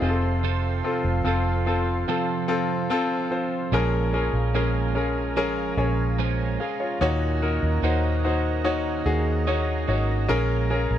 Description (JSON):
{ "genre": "pop ballad", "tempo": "73 BPM", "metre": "4/4", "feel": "straight", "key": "Bb minor", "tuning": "A4 = 440 Hz", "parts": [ { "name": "clear concert grand piano", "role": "accompaniment", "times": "0.0-11.0 s", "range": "Bb2 to Ab5", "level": "-25 LUFS", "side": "left 3 dB", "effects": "none" }, { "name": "lush unison pad", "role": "sustained chords", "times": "0.0-11.0 s", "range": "A4 to C6", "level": "-34 LUFS", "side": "right 4 dB", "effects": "chorus" }, { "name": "twelve-string electric guitar", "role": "arpeggios", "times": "0.0-11.0 s", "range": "F2 to A4", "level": "-31 LUFS", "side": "right 15 dB", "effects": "none" }, { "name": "vintage muted fingered electric bass", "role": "bass", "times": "0.0-11.0 s", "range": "F1 to Eb2", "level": "-25 LUFS", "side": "equal", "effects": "none" } ], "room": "little or no reverb", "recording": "dry, close 1970s-style studio recording", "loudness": "-22 LUFS", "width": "side -10 dB against mid", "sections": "0.0-3.7 A section; 3.7-11.0 B section", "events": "none", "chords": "0.0 F; 3.7 Bbm7; 7.0 Ebm7; 10.3 Bbm7" }